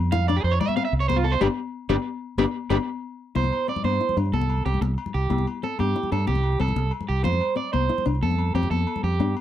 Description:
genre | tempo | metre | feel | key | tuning
highlife guitar band | 123 BPM (dotted quarters) | 12/8 | straight | C major | A4 = 440 Hz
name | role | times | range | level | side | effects
fingerpicked steel-string acoustic guitar | accompaniment | 0.0-9.4 s | B3 to G4 | -28 LUFS | left 8 dB | none
fingered electric bass | bass | 0.0-9.3 s | G1 to G2 | -23 LUFS | right 1 dB | none
electric guitar at the edge of break-up | arpeggios | 0.1-9.3 s | F4 to F5 | -27 LUFS | right 6 dB | slapback echo
congas | percussion | 0.1-9.3 s | none | -30 LUFS | left 7 dB | none
agogo bells | percussion | 0.3-9.4 s | none | -37 LUFS | left 8 dB | none
room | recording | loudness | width
little or no reverb | dry, close 1970s-style studio recording | -22 LUFS | side -11 dB against mid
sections
0.0-3.4 A section; 3.4-9.4 B section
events
clean electric guitar solo 0.0-3.4; band accent 1.4-3.4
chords
0.0 F5; 1.4 G; 3.4 C; 7.3 F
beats
0.44 0.93 | 1.42 1.90 2.39 2.87 | 3.36 3.85 4.33 4.82 | 5.30 5.79 6.28 6.76 | 7.25 7.74 8.22 8.71 | 9.20

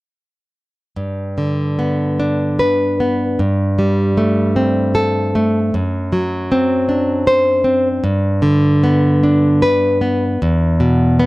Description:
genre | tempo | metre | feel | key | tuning
romantic piece for solo classical guitar | 48-54 BPM (dotted quarters) | 6/8 | rubato | G major | A4 = 440 Hz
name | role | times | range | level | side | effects
nylon-string guitar | solo | 1.0-11.3 s | E2 to C5 | -13 LUFS | equal | none
room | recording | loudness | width
small room ambience | dry, close 1970s-style studio recording | -13 LUFS | side -20 dB against mid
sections
0.9-11.3 A section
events
none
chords
0.9 G; 3.4 Am7/G; 5.7 D7/F#; 8.0 G; 10.4 E5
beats
| 0.95 2.19 | 3.40 4.56 | 5.75 6.90 | 8.04 9.24 | 10.40

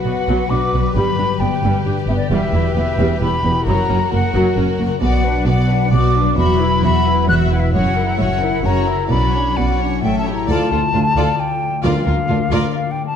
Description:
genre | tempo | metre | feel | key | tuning
cinematic | 132 BPM | 3/4 | straight | B harmonic minor | A4 = 440 Hz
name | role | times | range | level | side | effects
rich symphonic violin section | melody | 0.0-12.7 s | F4 to E5 | -27 LUFS | left 2 dB | none
bright concert flute | second line | 0.0-13.2 s | D5 to F#6 | -21 LUFS | left 2 dB | none
warm symphonic violin section | second line | 0.0-12.7 s | C#4 to Bb4 | -28 LUFS | left 3 dB | none
concert harp | arpeggios | 0.0-13.2 s | E2 to G5 | -22 LUFS | left 9 dB | none
warm studio double bass section | bass | 0.0-12.6 s | E1 to D2 | -20 LUFS | right 2 dB | none
warm symphonic cello section | bass | 0.0-12.6 s | D2 to B2 | -22 LUFS | right 2 dB | none
warm symphonic viola section | accompaniment | 0.1-12.7 s | F#3 to F#4 | -24 LUFS | right 1 dB | none
timpani | percussion | 11.8-12.5 s | D3 | -25 LUFS | equal | none
room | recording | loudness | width
wet scoring stage reverb, RT60 1.9 s | dark, warm production | -14 LUFS | side -8 dB against mid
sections
0.0-10.5 A section; 10.5-13.2 B section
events
none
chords
0.0 Bm; 1.0 G; 2.3 Em; 3.7 F#; 5.0 Bm; 6.4 Esus2; 7.7 F#7; 9.1 Bmadd9; 10.0 A7; 10.5 Dm; 11.8 Bb/D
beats
0.05 0.51 | 0.96 1.41 1.86 | 2.31 2.77 3.22 | 3.67 4.12 4.57 | 5.02 5.47 5.92 | 6.38 6.83 7.28 | 7.74 8.19 8.64 | 9.10 9.56 10.02 | 10.48 10.94 11.39 | 11.85 12.30 12.75

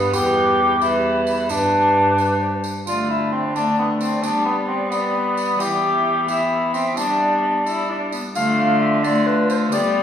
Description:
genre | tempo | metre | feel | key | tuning
classical, renaissance-style consort dance | 88 BPM (dotted quarters) | 6/8 | straight | D dorian | A4 = 441 Hz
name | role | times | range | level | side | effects
mellow tenor recorder | melody | 0.0-10.0 s | B4 to F5 | -24 LUFS | equal | none
dark cor anglais | second line | 0.0-10.0 s | B3 to G4 | -19 LUFS | equal | none
rich viola | accompaniment | 0.0-10.0 s | G3 to E4 | -25 LUFS | left 2 dB | none
rich cello | bass | 0.0-10.0 s | E2 to G3 | -26 LUFS | equal | none
tambourine | percussion | 0.1-9.9 s | none | -35 LUFS | right 4 dB | none
room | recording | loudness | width
wet recital hall reverb, RT60 1.5 s | recorded in a church or concert hall, studio reverb | -17 LUFS | side -9 dB against mid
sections
0.0-8.4 A section; 8.4-10.0 A section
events
none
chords
0.1 Em; 1.5 G; 2.9 D5; 4.2 G; 5.6 Em; 7.0 G; 8.4 Dm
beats
| 0.14 0.82 | 1.50 2.19 | 2.87 3.56 | 4.24 4.92 | 5.60 6.28 | 6.97 7.66 | 8.36 9.04 | 9.72

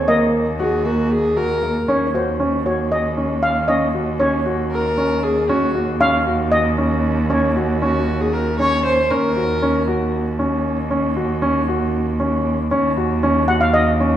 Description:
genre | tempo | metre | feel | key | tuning
contemporary instrumental, chamber music in an uneven meter | 233 BPM (eighths) | 7/8 | straight | Eb dorian | A4 = 440 Hz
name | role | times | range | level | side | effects
steel pan | melody | 0.0-7.8, 13.5-14.2 s | C5 to Gb5 | -20 LUFS | equal | none
rich cello | bass | 0.0-14.2 s | Eb2 | -21 LUFS | right 1 dB | none
warm baby grand piano | arpeggios | 0.1-14.2 s | Bb3 to Gb4 | -20 LUFS | equal | none
warm viola | second line | 0.6-1.9, 4.7-10.1 s | Gb4 to Db5 | -21 LUFS | left 1 dB | none
room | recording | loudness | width
wet recital hall reverb, RT60 1.7 s | recorded in a church or concert hall | -16 LUFS | side -11 dB against mid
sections
0.0-1.9 A section; 1.9-14.2 B section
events
none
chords
0.1 Ebm; 1.9 Ebm7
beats
| 0.09 0.34 0.60 0.86 1.11 1.37 1.63 | 1.89 2.14 2.40 2.66 2.92 3.17 3.43 | 3.69 3.95 4.21 4.46 4.72 4.98 5.24 | 5.50 5.75 6.01 6.27 6.53 6.79 7.04 | 7.30 7.56 7.82 8.08 8.33 8.59 8.85 | 9.11 9.37 9.62 9.88 10.14 10.40 10.65 | 10.91 11.17 11.43 11.69 11.94 12.20 12.46 | 12.71 12.97 13.23 13.48 13.74 14.00

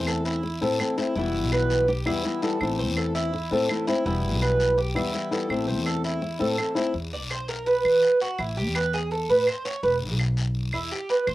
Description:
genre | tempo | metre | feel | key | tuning
latin, Cuban son and guajira | 166 BPM | 4/4 | straight | E minor | A4 = 440 Hz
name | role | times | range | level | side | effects
flamenco guitar | accompaniment | 0.0-6.9 s | B2 to E4 | -26 LUFS | left 3 dB | cassette tape
Cuban tres | arpeggios | 0.0-11.3 s | E4 to D5 | -25 LUFS | right 2 dB | cassette tape
upright bass | bass | 0.0-11.3 s | E1 to E3 | -28 LUFS | equal | none
claves | percussion | 0.1-11.3 s | none | -33 LUFS | right 1 dB | none
guiro | percussion | 0.1-11.3 s | none | -36 LUFS | left 4 dB | none
room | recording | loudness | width
moderate studio reverb, RT60 0.5 s | home recording on cassette | -22 LUFS | side -16 dB against mid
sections
0.0-6.9 A section; 6.9-11.3 B section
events
Cuban tres solo 6.9-11.3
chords
0.0 Am; 1.2 Em; 2.6 Am; 4.1 Em; 5.5 Am; 6.9 E5; 8.4 A5; 9.8 E5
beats
0.07 0.44 0.80 | 1.16 1.52 1.88 2.24 | 2.61 2.97 3.33 3.69 | 4.05 4.41 4.77 5.13 | 5.50 5.86 6.22 6.58 | 6.94 7.30 7.66 8.02 | 8.38 8.75 9.11 9.47 | 9.83 10.19 10.55 10.91 | 11.27

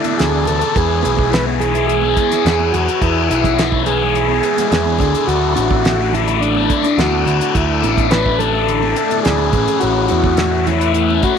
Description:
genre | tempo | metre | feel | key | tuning
psychedelic rock | 106 BPM | 4/4 | straight | unclear | A4 = 440 Hz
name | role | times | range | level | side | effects
overdriven combo organ | melody | 0.0-11.4 s | D4 to B4 | -18 LUFS | right 2 dB | tape echo
percussive tonewheel organ | sustained chords | 0.0-11.4 s | A3 to A5 | -27 LUFS | right 13 dB | slow rotary speaker, chorus vibrato
biting overdriven guitar | riff | 0.0-11.4 s | A2 to E4 | -18 LUFS | left 13 dB | phaser
damped 70s drum kit | drums | 0.0-11.4 s | hi-hat, kick drum, snare drum | -20 LUFS | right 1 dB | none
congas | percussion | 0.0-11.2 s | none | -28 LUFS | right 16 dB | none
growling picked electric bass | bass | 0.2-11.2 s | A1 to E2 | -20 LUFS | right 1 dB | overdrive
room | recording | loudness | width
light reverb, studio ambience | 1960s-style stereo with parts hard left and right | -13 LUFS | side -7 dB against mid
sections
0.0-11.4 A section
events
none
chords
0.0 Dsus2; 0.8 E6; 5.0 Dsus2; 9.5 A6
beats
0.20 | 0.76 1.33 1.89 2.46 | 3.02 3.59 4.15 4.72 | 5.29 5.85 6.42 6.98 | 7.55 8.11 8.68 9.24 | 9.81 10.38 10.95

